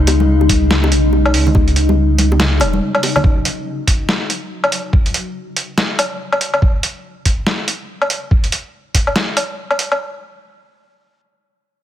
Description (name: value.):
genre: deep dubstep.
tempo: 142 BPM.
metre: 4/4.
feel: swing 60% on 16ths, half-time.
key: unclear.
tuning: A4 = 440 Hz.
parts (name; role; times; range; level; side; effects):
granular cloud pad; sustained chords; 0.0-6.6 s; C#3 to D#4; -20 LUFS; left 3 dB; built-in reverb.
soft dub sub bass; bass; 0.0-2.8 s; E1 to C#2; -14 LUFS; equal; none.
trip hop sampler-style drum kit; drums; 0.1-10.0 s; hi-hat, snare drum, woodblock; -17 LUFS; equal; none.
bongos and congas; percussion; 0.1-3.2 s; none; -22 LUFS; right 1 dB; dub echo.
electronic kick drum; drums; 0.5-9.0 s; none; -14 LUFS; equal; none.
room: light reverb, digital ambience.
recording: none.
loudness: -14 LUFS.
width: side -11 dB against mid.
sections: 0.0-10.0 A section.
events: filter sweep on ambient pad 0.0-6.6.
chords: 0.0 C#sus2.